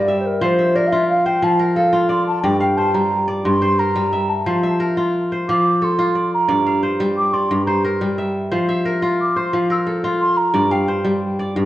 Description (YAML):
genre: west african traditional, West African string and xylophone music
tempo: 118 BPM (dotted quarters)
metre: 12/8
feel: straight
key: F major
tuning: A4 = 439 Hz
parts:
  - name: mellow hollow baroque flute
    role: melody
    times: 0.0-10.9 s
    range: Bb4 to E6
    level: -19 LUFS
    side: right 1 dB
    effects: none
  - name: kora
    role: arpeggios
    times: 0.0-11.7 s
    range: G2 to F5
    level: -18 LUFS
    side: equal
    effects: none
room: wet recital hall reverb, RT60 1.6 s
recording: worn, warbling old tape, cassette tape, warbly pitch drift, nothing above 10.9 kHz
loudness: -16 LUFS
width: side -14 dB against mid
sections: 0.0-11.7 A section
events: flute solo 0.0-11.7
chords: 0.4 F; 2.4 Gm; 4.5 F; 6.5 Gm; 8.5 F; 10.5 Gm